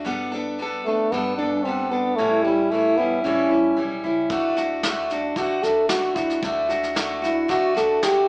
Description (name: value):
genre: acoustic folk duo or small band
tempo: 113 BPM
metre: 4/4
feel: straight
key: unclear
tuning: A4 = 443 Hz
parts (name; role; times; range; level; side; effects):
- picked steel-string acoustic guitar; accompaniment; 0.0-8.3 s; A2 to A4; -22 LUFS; equal; none
- upright bass; bass; 0.1-8.3 s; G1 to D2; -40 LUFS; equal; none
- warm French horn; melody; 0.9-8.3 s; G3 to A4; -21 LUFS; equal; none
- soft brush drum kit; drums; 4.3-8.1 s; kick drum, snare drum; -28 LUFS; equal; none
room: wet large studio reverb, RT60 0.9 s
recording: heard from further back in the room, small speaker sound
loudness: -19 LUFS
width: side -31 dB against mid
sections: 0.0-8.3 A section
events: none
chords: 0.1 Gadd9; 2.2 A7; 4.3 D